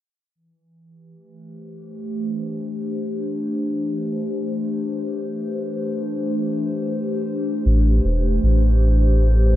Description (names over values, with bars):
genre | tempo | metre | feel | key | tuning
ambient dub | free time | none | none | unclear | A4 = 440 Hz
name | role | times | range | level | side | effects
warbly tape-like pad | sustained chords | 1.4-9.6 s | E3 to C5 | -24 LUFS | left 1 dB | chorus, built-in reverb, phaser
soft dub sub bass | bass | 7.7-9.6 s | E1 to A1 | -15 LUFS | equal | none
room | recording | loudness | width
light reverb | dark, warm production, nothing above 10.5 kHz | -19 LUFS | side -14 dB against mid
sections
0.4-9.6 A section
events
filter sweep on ambient pad 0.4-9.6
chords
0.4 A7sus4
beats
free time